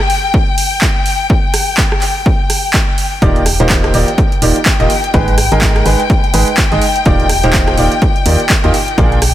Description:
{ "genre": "piano house", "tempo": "125 BPM", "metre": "4/4", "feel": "swing 59% on 16ths", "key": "Eb major", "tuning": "A4 = 443 Hz", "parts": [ { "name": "rich chamber string section", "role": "sustained chords", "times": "0.0-9.3 s", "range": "G5", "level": "-18 LUFS", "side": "left 4 dB", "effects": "sidechain pumping" }, { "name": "punchy analog drum machine", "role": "drums", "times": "0.0-9.3 s", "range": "handclaps, hi-hat, rim click", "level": "-17 LUFS", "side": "right 1 dB", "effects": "overdrive" }, { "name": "electronic kick drum", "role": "drums", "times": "0.3-9.1 s", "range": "none", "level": "-14 LUFS", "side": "equal", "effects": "overdrive" }, { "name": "clear upright piano", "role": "riff", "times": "3.2-9.2 s", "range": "Bb2 to Eb5", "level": "-16 LUFS", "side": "right 2 dB", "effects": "sidechain pumping, tape echo" }, { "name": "organ-like FM bass", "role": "bass", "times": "3.2-9.3 s", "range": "Eb1 to Eb2", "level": "-14 LUFS", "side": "equal", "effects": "sidechain pumping" } ], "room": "light reverb, digital ambience", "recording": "none", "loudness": "-10 LUFS", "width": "side -13 dB against mid", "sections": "0.0-9.3 A section", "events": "none", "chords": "0.0 N.C.; 3.2 Ebmaj9; 5.1 Abm; 7.1 Ebmaj9; 8.7 Bb7" }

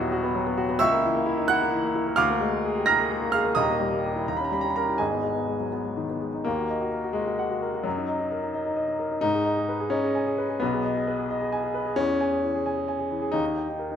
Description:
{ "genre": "classical, virtuoso piano study", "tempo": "87 BPM (dotted quarters)", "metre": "6/8", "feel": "rubato", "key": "G# minor, Eb minor from 6.5 s", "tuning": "A4 = 440 Hz", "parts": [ { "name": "clear baby grand piano", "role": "solo", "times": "0.0-14.0 s", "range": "D#1 to A#6", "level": "-23 LUFS", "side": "equal", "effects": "none" } ], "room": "wet recital hall reverb, RT60 1.6 s", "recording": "none", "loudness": "-23 LUFS", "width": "side -8 dB against mid", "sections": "0.0-6.5 A section; 6.5-14.0 B section", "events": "none", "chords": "0.0 B/D#; 0.8 A#dim/C#; 2.2 A#7/D; 3.6 D#; 4.3 D#7; 5.0 G#m; 6.5 Ebm; 7.9 Ebm/Gb; 9.2 Abm; 10.6 Abm/Cb; 12.0 C#m/E; 13.3 D#" }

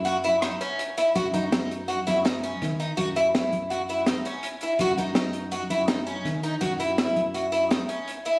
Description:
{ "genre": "progressive instrumental, band music in an uneven meter", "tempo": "165 BPM", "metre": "5/4", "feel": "straight", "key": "unclear", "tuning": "A4 = 441 Hz", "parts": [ { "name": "picked twelve-string acoustic guitar", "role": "arpeggios", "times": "0.0-8.4 s", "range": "C#4 to F#4", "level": "-24 LUFS", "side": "equal", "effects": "tape echo" }, { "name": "fretless electric bass", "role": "bass", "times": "0.0-7.8 s", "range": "F#2 to D#3", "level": "-30 LUFS", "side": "equal", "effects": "none" }, { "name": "open jazz drum kit", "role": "drums", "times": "0.1-8.3 s", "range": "hi-hat, kick drum, rim click, snare drum", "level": "-28 LUFS", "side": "equal", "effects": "none" } ], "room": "moderate studio ambience, RT60 0.5 s", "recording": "recorded on a phone in the room, studio reverb, compression, faint mains hum", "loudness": "-23 LUFS", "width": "side -26 dB against mid", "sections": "0.0-8.4 A section", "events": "none", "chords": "0.0 F#5" }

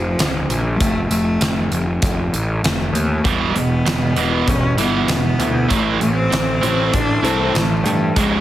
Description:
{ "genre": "quiet-loud alternative rock", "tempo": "98 BPM", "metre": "4/4", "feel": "straight", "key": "unclear", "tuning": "A4 = 440 Hz", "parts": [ { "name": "clear cello", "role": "melody", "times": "0.0-8.4 s", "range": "F3 to D4", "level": "-22 LUFS", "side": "left 1 dB", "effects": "slapback echo" }, { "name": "fuzz picked electric bass", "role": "bass", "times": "0.0-8.4 s", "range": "Db1 to G2", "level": "-21 LUFS", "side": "equal", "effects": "overdrive" }, { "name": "huge arena drum kit", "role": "drums", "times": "0.2-8.3 s", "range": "hi-hat, kick drum, snare drum", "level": "-22 LUFS", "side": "equal", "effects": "none" }, { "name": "fingerpicked acoustic archtop guitar", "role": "arpeggios", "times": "3.2-8.4 s", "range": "Db2 to A4", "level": "-26 LUFS", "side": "left 6 dB", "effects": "slapback echo" }, { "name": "distorted electric guitar", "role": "riff", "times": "3.2-8.4 s", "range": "Db2 to A3", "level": "-20 LUFS", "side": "right 5 dB", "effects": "distortion" } ], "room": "light reverb", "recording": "heavily compressed radio sound", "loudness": "-15 LUFS", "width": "side -13 dB against mid", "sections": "0.0-8.4 A section", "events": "none", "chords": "0.0 Db; 0.8 F; 3.3 Em; 5.7 Am" }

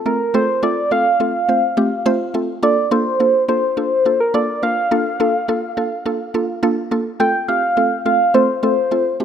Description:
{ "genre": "dance-pop", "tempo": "105 BPM", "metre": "4/4", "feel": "straight", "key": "F major", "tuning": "A4 = 440 Hz", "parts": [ { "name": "soft struck synth lead", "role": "melody", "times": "0.0-9.2 s", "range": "Bb4 to G5", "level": "-17 LUFS", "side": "equal", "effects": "chorus, phaser, ping-pong delay" }, { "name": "mallet-like synth pluck", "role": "accompaniment", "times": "0.1-9.2 s", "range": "A3 to C5", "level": "-19 LUFS", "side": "right 1 dB", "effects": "chorus, phaser" } ], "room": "light reverb", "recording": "rough home demo mix", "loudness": "-15 LUFS", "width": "side -8 dB against mid", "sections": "0.0-7.2 A section; 7.2-9.2 B section", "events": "build-up 7.2-9.2; filter sweep 7.2-9.2", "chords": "0.0 F; 2.6 Bbmaj7; 7.2 F" }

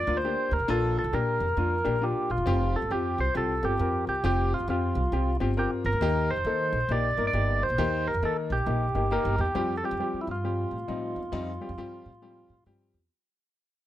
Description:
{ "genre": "uptempo 1960s-style soul", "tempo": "135 BPM", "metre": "4/4", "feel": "swing 63% on 8ths", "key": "F mixolydian", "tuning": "A4 = 442 Hz", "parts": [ { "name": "percussive tonewheel organ", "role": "melody", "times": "0.0-12.6 s", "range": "E4 to D5", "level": "-29 LUFS", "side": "right 1 dB", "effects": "overdrive" }, { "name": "upright bass", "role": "bass", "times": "0.0-13.1 s", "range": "E1 to Eb3", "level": "-29 LUFS", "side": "right 1 dB", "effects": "none" }, { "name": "warm concert grand piano", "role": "accompaniment", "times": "0.1-13.0 s", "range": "F3 to Bb4", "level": "-31 LUFS", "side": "left 4 dB", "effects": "none" } ], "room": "light reverb, small room ambience", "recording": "none", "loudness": "-25 LUFS", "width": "side -13 dB against mid", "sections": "0.0-9.6 A section; 9.6-13.1 B section", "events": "fade-out 9.6-13.1", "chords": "0.0 Bb; 2.5 Fsus2; 6.0 Eb; 9.6 Fsus2" }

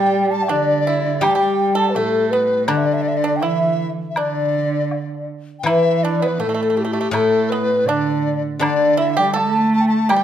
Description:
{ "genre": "chinese traditional, Chinese chamber ensemble", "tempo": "81 BPM", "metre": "2/4", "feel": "straight", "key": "D zhi mode", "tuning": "A4 = 442 Hz", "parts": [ { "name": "mellow hollow xiao", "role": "melody", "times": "0.0-10.2 s", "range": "E4 to A5", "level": "-22 LUFS", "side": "equal", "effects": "none" }, { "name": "dark cello", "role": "second line", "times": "0.0-10.2 s", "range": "A2 to A3", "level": "-22 LUFS", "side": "right 4 dB", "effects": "none" }, { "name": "large dizi", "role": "second line", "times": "0.0-10.2 s", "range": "G4 to A5", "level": "-22 LUFS", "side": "left 4 dB", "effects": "none" }, { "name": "pipa", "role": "second line", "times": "0.0-10.2 s", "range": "A3 to A4", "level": "-24 LUFS", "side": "right 4 dB", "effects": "none" }, { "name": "guzheng", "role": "accompaniment", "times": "0.0-10.2 s", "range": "A2 to G3", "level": "-25 LUFS", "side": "left 5 dB", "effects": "none" }, { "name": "woodblock", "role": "percussion", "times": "0.5-10.2 s", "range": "none", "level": "-26 LUFS", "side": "left 1 dB", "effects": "none" } ], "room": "light reverb", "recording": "close, detailed microphones", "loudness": "-16 LUFS", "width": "side -10 dB against mid", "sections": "0.0-5.7 A section; 5.7-10.2 B section", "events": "none", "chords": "none" }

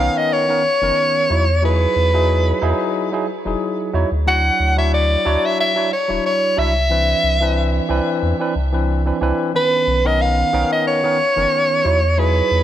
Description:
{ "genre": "sunset chillout", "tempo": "91 BPM", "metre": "4/4", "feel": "swing 54% on 16ths", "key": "unclear", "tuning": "A4 = 445 Hz", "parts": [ { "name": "breathy soprano saxophone", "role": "melody", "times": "0.0-12.6 s", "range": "B4 to F#5", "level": "-17 LUFS", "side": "equal", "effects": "ping-pong delay" }, { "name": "barky tine electric piano", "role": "accompaniment", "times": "0.0-12.6 s", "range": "D#3 to E5", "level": "-21 LUFS", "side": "equal", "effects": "auto-pan, ping-pong delay" }, { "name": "warm sub bass", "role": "bass", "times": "0.0-12.6 s", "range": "D1 to E2", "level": "-18 LUFS", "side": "equal", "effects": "none" } ], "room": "light reverb, small room ambience", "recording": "none", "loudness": "-15 LUFS", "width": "side -11 dB against mid", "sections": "0.0-12.6 A section", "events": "none", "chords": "0.0 Bmaj9; 1.3 Emaj9; 4.3 Dmaj9; 6.9 Cmaj9; 9.5 Bmaj9; 11.9 Emaj9" }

